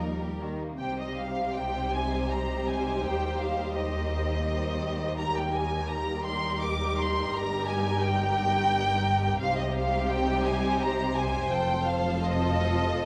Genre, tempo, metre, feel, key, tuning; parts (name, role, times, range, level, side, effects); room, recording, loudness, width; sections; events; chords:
classical, slow romantic movement for string orchestra; 84 BPM; 3/4; rubato; C minor; A4 = 440 Hz
warm symphonic violin section; second line; 0.0-13.1 s; Bb3 to C5; -37 LUFS; equal
dark studio viola section; accompaniment; 0.0-13.1 s; F3 to F4; -36 LUFS; equal
rich symphonic cello section; bass; 0.0-13.1 s; Eb2 to F3; -36 LUFS; equal
warm symphonic double bass section; bass; 0.0-13.1 s; F1 to Eb2; -36 LUFS; equal
warm symphonic violin section; melody; 0.8-13.1 s; Eb5 to D6; -32 LUFS; equal
moderate large studio reverb, RT60 1.3 s; -28 LUFS; mono
0.8-13.1 A section
0.0 Eb; 0.8 Cm; 3.0 Cm/Eb; 7.3 Eb/G; 9.4 Cm; 11.5 F7